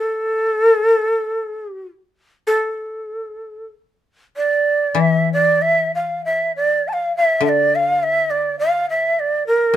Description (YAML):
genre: japanese traditional, Japanese chamber music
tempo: 48-52 BPM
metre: 4/4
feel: rubato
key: D hirajoshi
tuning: A4 = 438 Hz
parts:
  - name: breathy shakuhachi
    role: melody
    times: 0.0-9.7 s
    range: A4 to A5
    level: -16 LUFS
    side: right 1 dB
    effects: none
  - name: koto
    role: accompaniment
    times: 4.9-9.8 s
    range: D3 to E3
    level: -21 LUFS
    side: left 6 dB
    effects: none
room: light reverb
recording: minimal, uncompressed stereo recording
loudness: -15 LUFS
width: side -11 dB against mid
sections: 0.0-9.8 A section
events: none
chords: none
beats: 1.22 | 2.47 3.71 4.95 6.21 | 7.42 8.58